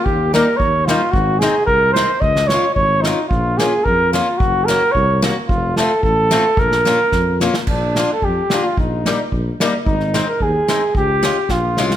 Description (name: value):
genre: alpine folk, alpine dance band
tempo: 110 BPM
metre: 2/4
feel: straight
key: Bb minor, Bb major from 7.7 s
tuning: A4 = 443 Hz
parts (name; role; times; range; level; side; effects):
- warm flugelhorn; melody; 0.0-11.9 s; D4 to Eb5; -16 LUFS; right 1 dB; none
- mellow tuba; bass; 0.1-12.0 s; F1 to F2; -22 LUFS; equal; none
- unplugged drum kit; drums; 0.1-12.0 s; crash cymbal, kick drum, snare drum; -22 LUFS; equal; none
- picked steel-string acoustic guitar; accompaniment; 0.3-11.9 s; G3 to Gb4; -22 LUFS; left 4 dB; none
room: moderate recital hall reverb, RT60 1.6 s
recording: none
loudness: -14 LUFS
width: side -11 dB against mid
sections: 0.0-7.7 A section; 7.7-12.0 B section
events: drum fill 7.1-7.7, 11.5-12.0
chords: 0.1 Eb; 1.1 Ab; 2.2 Db; 3.3 Bbm; 4.4 Gb; 5.5 F; 6.6 Bbm; 7.7 Bb; 8.8 Eb/Bb; 9.9 Ab; 11.0 Db